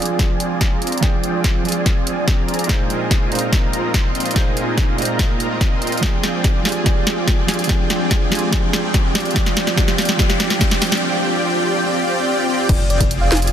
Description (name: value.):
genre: future bass.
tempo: 144 BPM.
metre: 4/4.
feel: half-time.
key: F dorian.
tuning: A4 = 440 Hz.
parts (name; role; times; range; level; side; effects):
felt-muted upright piano; accompaniment; 0.0-12.7 s; Bb2 to G5; -24 LUFS; right 4 dB; sidechain pumping, tape echo.
ethereal airy pad; sustained chords; 0.4-11.0 s; F3 to G5; -30 LUFS; left 1 dB; ensemble chorus, built-in reverb, phaser, sidechain pumping.
supersaw chords; riff; 0.0-13.5 s; C4 to C6; -22 LUFS; equal; analog chorus, sidechain pumping, low-pass filter, tape echo.
saturated sub bass; bass; 0.0-13.5 s; F1 to Bb1; -25 LUFS; left 1 dB; none.
trap drum kit; drums; 0.0-13.5 s; crash cymbal, hi-hat, snare drum; -22 LUFS; equal; none.
electronic kick drum; drums; 0.2-13.1 s; none; -18 LUFS; equal; none.
riser and impact; sound effects; 7.4-13.5 s; none; -30 LUFS; left 1 dB; none.
thumb-piano-like synth pluck; melody; 12.7-13.4 s; D5 to F5; -24 LUFS; right 1 dB; chorus, sidechain pumping.
room: moderate shimmer reverb, RT60 4.3 s.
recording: dense, heavily limited modern master.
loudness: -15 LUFS.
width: side -9 dB against mid.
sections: 0.0-12.7 A section.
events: build-up 0.0-12.7; drum fill 0.0-11.0; filter sweep on supersaw synth 0.0-12.7; filter sweep on ambient pad 0.0-12.7; riser 7.4-11.0; impact 12.7-13.5.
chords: 0.0 Fm69; 2.7 Bb9sus4; 6.0 Fm69; 9.2 Gm7; 12.7 Fm69.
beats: 0.19 0.61 | 1.03 1.44 1.86 2.28 | 2.69 3.11 3.53 3.94 | 4.36 4.78 5.19 5.61 | 6.03 6.44 6.86 7.28 | 7.69 8.11 8.53 8.94 | 9.36 9.78 10.19 10.61 | 11.03 11.44 11.86 12.28 | 12.69 13.11.